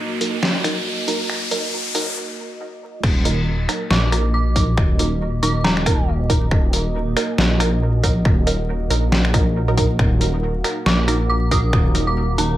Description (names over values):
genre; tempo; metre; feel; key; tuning
deep dubstep; 138 BPM; 4/4; swing 57% on 16ths, half-time; Eb harmonic minor; A4 = 439 Hz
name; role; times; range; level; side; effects
dark analog pad; sustained chords; 0.0-12.6 s; Bb3 to Eb5; -28 LUFS; right 1 dB; chorus
riser; sound effects; 0.0-2.2 s; none; -25 LUFS; equal; none
filtered dub chord stab; stabs; 0.2-12.5 s; Gb3 to Bb4; -26 LUFS; right 3 dB; phaser, cassette tape, dub echo
trip hop sampler-style drum kit; drums; 0.2-12.5 s; crash cymbal, finger snaps, hi-hat, snare drum; -22 LUFS; left 1 dB; none
dark detuned saw bass; bass; 3.0-12.6 s; Eb1 to Bb1; -19 LUFS; equal; none
electronic kick drum; drums; 3.0-11.8 s; none; -18 LUFS; equal; none
dark detuned synth bell; melody; 3.9-6.1, 10.9-12.6 s; Bb5 to Eb6; -27 LUFS; right 1 dB; chorus, tremolo, dub echo
room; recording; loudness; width
light reverb; vinyl crackle, high-pass filter; -16 LUFS; side -14 dB against mid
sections
0.0-3.0 A section; 3.0-12.6 B section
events
build-up 0.0-3.0; riser 0.0-2.2; filter sweep on synth stab 0.0-3.0; break 2.2-3.0; drop 3.0-12.6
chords
0.0 Ebm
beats
0.43 0.86 | 1.30 1.73 2.17 2.60 | 3.04 3.47 3.90 4.34 | 4.78 5.21 5.64 6.08 | 6.51 6.95 7.38 7.82 | 8.25 8.69 9.12 9.56 | 9.99 10.43 10.86 11.30 | 11.73 12.17